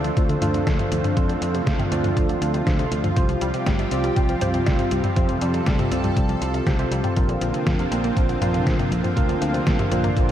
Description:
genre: italo disco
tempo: 120 BPM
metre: 4/4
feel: straight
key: unclear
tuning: A4 = 440 Hz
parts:
  - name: lush unison pad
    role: sustained chords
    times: 0.0-10.3 s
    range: C3 to A4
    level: -25 LUFS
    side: right 1 dB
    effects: chorus
  - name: analog pluck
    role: arpeggios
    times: 0.0-10.3 s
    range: C3 to C5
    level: -29 LUFS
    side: left 2 dB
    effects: chorus, phaser, ping-pong delay
  - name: barky tine electric piano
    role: stabs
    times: 0.0-10.3 s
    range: C4 to D5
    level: -29 LUFS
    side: right 1 dB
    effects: overdrive, wide subtle chorus, ping-pong delay
  - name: modern bright fingered electric bass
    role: bass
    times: 0.0-10.3 s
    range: G1 to F2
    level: -26 LUFS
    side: equal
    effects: none
  - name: detuned 8-bit digital drum machine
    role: drums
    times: 0.0-10.3 s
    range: hi-hat, snare drum, toms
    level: -26 LUFS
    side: equal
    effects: none
  - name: electronic kick drum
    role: drums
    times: 0.2-10.3 s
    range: none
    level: -22 LUFS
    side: equal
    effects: none
room: moderate lush hall reverb, RT60 1.9 s, digital ambience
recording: dark, warm production, vinyl crackle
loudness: -19 LUFS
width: side -11 dB against mid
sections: 0.0-10.3 A section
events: none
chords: 0.0 Dm7; 3.2 Csus4; 7.2 Bbadd9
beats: 0.17 0.67 | 1.17 1.67 2.17 2.67 | 3.17 3.67 4.17 4.67 | 5.17 5.67 6.17 6.67 | 7.17 7.67 8.17 8.67 | 9.17 9.67 10.17

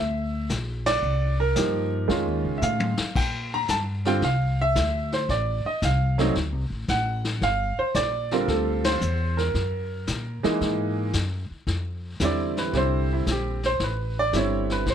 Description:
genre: jazz piano trio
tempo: 113 BPM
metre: 4/4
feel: swing 69% on 8ths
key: F major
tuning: A4 = 442 Hz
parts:
  - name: clear baby grand piano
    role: melody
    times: 0.0-14.9 s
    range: D3 to Bb5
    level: -25 LUFS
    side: right 2 dB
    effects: none
  - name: upright bass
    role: bass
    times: 0.0-14.9 s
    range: G1 to Bb2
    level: -27 LUFS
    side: left 1 dB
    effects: none
  - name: vintage brush drum kit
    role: drums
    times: 0.5-14.9 s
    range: brushed snare drum, crash cymbal, hi-hat, kick drum, ride cymbal, snare drum, toms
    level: -30 LUFS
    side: left 3 dB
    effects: none
room: light reverb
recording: none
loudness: -22 LUFS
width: side -9 dB against mid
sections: 0.0-11.7 A section; 11.7-14.9 B section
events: band accent 0.8, 8.7; drum fill 2.6-3.2; grand piano solo 11.7-14.9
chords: 0.0 Gm (rootless); 1.0 Cm7; 2.1 F7alt; 3.2 Bb69; 5.3 Adim; 6.3 D7; 7.4 Gm7; 9.5 Gb13; 11.7 F5; 13.8 Am7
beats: 0.49 | 1.03 1.56 2.09 2.62 | 3.15 3.69 4.22 4.75 | 5.28 5.81 6.35 6.88 | 7.41 7.94 8.47 9.01 | 9.54 10.07 10.60 11.14 | 11.67 12.20 12.73 13.27 | 13.80 14.33 14.86

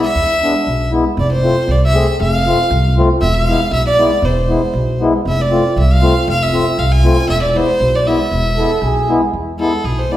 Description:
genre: klezmer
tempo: 118 BPM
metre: 2/4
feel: straight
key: E phrygian dominant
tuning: A4 = 436 Hz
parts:
  - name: clear violin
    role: melody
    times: 0.0-10.2 s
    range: G#4 to G#5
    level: -17 LUFS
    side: equal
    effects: none
  - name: mellow accordion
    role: accompaniment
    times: 0.0-10.2 s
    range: G#3 to G#4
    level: -17 LUFS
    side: left 2 dB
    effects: none
  - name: upright bass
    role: bass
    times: 0.2-10.0 s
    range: E1 to E2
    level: -16 LUFS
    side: equal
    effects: none
  - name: clear trombone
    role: second line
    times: 8.6-9.3 s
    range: G#4 to A4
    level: -19 LUFS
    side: right 4 dB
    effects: none
room: wet recital hall reverb, RT60 1.3 s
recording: heard from further back in the room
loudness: -12 LUFS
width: side -13 dB against mid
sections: 0.0-1.2 A section; 1.2-9.3 A section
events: none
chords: 0.0 E; 1.2 F; 3.2 E; 5.3 F; 7.3 E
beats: | 0.15 0.66 | 1.17 1.68 | 2.19 2.70 | 3.21 3.72 | 4.23 4.74 | 5.25 5.76 | 6.27 6.78 | 7.29 7.80 | 8.32 8.83 | 9.34 9.85

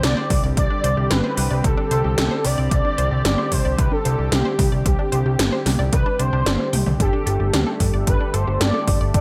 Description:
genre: synthwave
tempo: 112 BPM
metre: 4/4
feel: straight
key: unclear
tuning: A4 = 441 Hz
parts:
  - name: expressive portamento lead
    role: melody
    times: 0.0-9.2 s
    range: G4 to D5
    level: -27 LUFS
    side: equal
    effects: ensemble chorus, delay
  - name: warm analog pad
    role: sustained chords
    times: 0.0-9.2 s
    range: D3 to G4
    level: -30 LUFS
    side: equal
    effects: chorus, sidechain pumping
  - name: unison pluck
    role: arpeggios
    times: 0.0-9.2 s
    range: G3 to G5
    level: -33 LUFS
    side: equal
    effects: delay
  - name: fat analog bass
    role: bass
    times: 0.0-9.2 s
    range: G1 to D2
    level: -23 LUFS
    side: equal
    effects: none
  - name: 80s electronic pad drums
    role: drums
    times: 0.0-9.2 s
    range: hi-hat, snare drum, toms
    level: -26 LUFS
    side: equal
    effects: gated reverb on snare and toms, overdrive, gated reverb
  - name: electronic kick drum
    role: drums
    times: 0.3-9.2 s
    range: none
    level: -23 LUFS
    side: equal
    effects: overdrive
  - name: mellow synth brass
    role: stabs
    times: 7.0-9.2 s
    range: D4 to A4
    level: -33 LUFS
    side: equal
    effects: chorus, delay
room: little or no reverb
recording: none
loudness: -20 LUFS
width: mono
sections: 0.0-9.2 A section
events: drum fill 6.7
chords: 0.0 Csus2; 7.0 Gsus2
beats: 0.04 | 0.57 1.11 1.64 2.18 | 2.71 3.25 3.79 4.32 | 4.86 5.39 5.93 6.46 | 7.00 7.54 8.07 8.61 | 9.14

